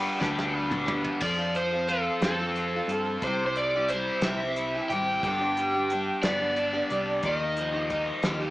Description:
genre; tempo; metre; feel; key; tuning
folk rock and heartland rock; 60 BPM (dotted quarters); 6/8; straight; unclear; A4 = 437 Hz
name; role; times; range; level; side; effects
overdriven slide guitar; melody; 0.0-8.2 s; A4 to G5; -28 LUFS; equal; none
picked steel-string acoustic guitar; accompaniment; 0.0-8.5 s; G2 to A4; -33 LUFS; left 1 dB; none
biting overdriven guitar; riff; 0.0-8.5 s; G2 to B4; -30 LUFS; equal; phaser
picked electric bass; bass; 0.0-8.5 s; G1 to G2; -37 LUFS; equal; none
soft brush drum kit; drums; 0.2-8.4 s; crash cymbal, hi-hat, kick drum, snare drum, toms; -33 LUFS; equal; none
room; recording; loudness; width
light reverb; small speaker sound; -25 LUFS; side -18 dB against mid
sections
0.0-1.2 A section; 1.2-8.5 B section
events
drum fill 0.2-1.2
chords
0.0 G; 1.2 F; 3.2 C; 5.2 G; 7.2 Ebadd9

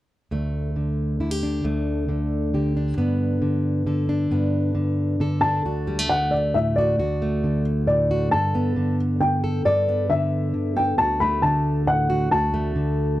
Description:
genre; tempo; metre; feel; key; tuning
folk; 135 BPM; 3/4; straight; D major; A4 = 440 Hz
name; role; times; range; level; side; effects
fingerpicked plugged-in steel-string acoustic guitar; accompaniment; 0.3-13.2 s; D2 to A4; -22 LUFS; equal; none
dark upright piano; melody; 5.4-13.2 s; D5 to B5; -22 LUFS; left 1 dB; none
room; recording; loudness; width
light reverb; dry, close 1970s-style studio recording; -20 LUFS; side -15 dB against mid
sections
0.3-5.7 A section; 5.7-13.2 B section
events
none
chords
0.3 D5; 3.0 Gadd9; 5.7 D; 8.3 Gadd9; 11.0 D

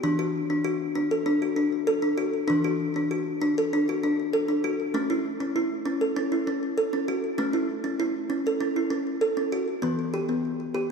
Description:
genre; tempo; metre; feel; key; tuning
world meditative, meditative tuned percussion; 98 BPM; 4/4; straight; unclear; A4 = 441 Hz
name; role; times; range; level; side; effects
kalimba; solo; 0.0-10.9 s; E3 to A4; -24 LUFS; equal; ping-pong delay
room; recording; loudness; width
wet church reverb, RT60 3.1 s; dark, warm production; -24 LUFS; side -5 dB against mid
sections
0.0-9.8 A section; 9.8-10.9 B section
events
none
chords
0.0 D/E; 4.9 A; 9.8 Em

